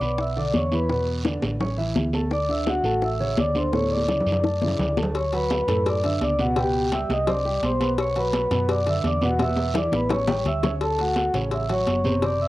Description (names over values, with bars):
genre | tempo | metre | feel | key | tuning
latin, salsa | 169 BPM | 4/4 | straight | D major | A4 = 440 Hz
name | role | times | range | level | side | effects
vibraphone with medium mallets | melody | 0.0-12.5 s | F#4 to E6 | -24 LUFS | equal | analog delay
dark baby grand piano | accompaniment | 0.0-12.5 s | A2 to C#6 | -28 LUFS | right 1 dB | cassette tape
hollow-body short-scale fingered electric bass | bass | 0.0-12.5 s | F#1 to F#2 | -28 LUFS | equal | none
bongos and cowbell | percussion | 0.0-12.4 s | none | -29 LUFS | left 4 dB | none
congas | percussion | 0.0-12.5 s | none | -29 LUFS | right 1 dB | none
guiro | percussion | 0.0-12.5 s | none | -38 LUFS | right 4 dB | none
room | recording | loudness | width
light reverb | home recording on cassette | -21 LUFS | side -17 dB against mid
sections
0.0-5.1 A section; 5.1-12.5 B section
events
drum fill 3.7-5.1, 9.4-10.8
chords
0.2 Bm; 0.9 E5; 1.6 A; 2.3 Dmaj9; 5.1 D6; 6.6 C#m7b5; 7.3 C5; 8.0 Bmadd9; 9.4 E5; 10.1 A7; 10.8 Dmaj7